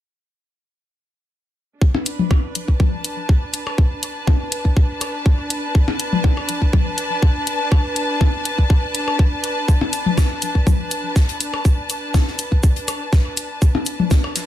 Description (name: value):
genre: minimal techno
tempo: 122 BPM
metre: 4/4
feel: straight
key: B minor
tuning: A4 = 437 Hz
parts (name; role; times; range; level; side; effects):
- electronic kick drum; drums; 1.8-14.2 s; none; -14 LUFS; equal; none
- rich symphonic string section; texture; 1.8-14.5 s; D4 to A5; -25 LUFS; equal; sidechain pumping
- electronic percussion blips and toms; percussion; 1.9-14.3 s; none; -24 LUFS; left 5 dB; digital delay
- electronic hi-hat; drums; 2.1-14.5 s; none; -21 LUFS; left 2 dB; none
- soft-mallet drum kit; drums; 9.7-14.5 s; hi-hat, shaker, snare drum; -32 LUFS; right 1 dB; sidechain pumping on hats, high-pass filter on hats, high-pass filter on snare, sidechain pumping on perc, high-pass filter on perc, high-pass filter on room
room: light reverb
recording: none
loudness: -16 LUFS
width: side -12 dB against mid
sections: 1.8-14.5 A section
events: none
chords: 1.8 Bm7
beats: | 1.81 2.31 2.80 3.29 | 3.78 4.27 4.77 5.26 | 5.75 6.24 6.73 7.22 | 7.72 8.21 8.70 9.19 | 9.68 10.18 10.67 11.16 | 11.65 12.14 12.63 13.13 | 13.62 14.11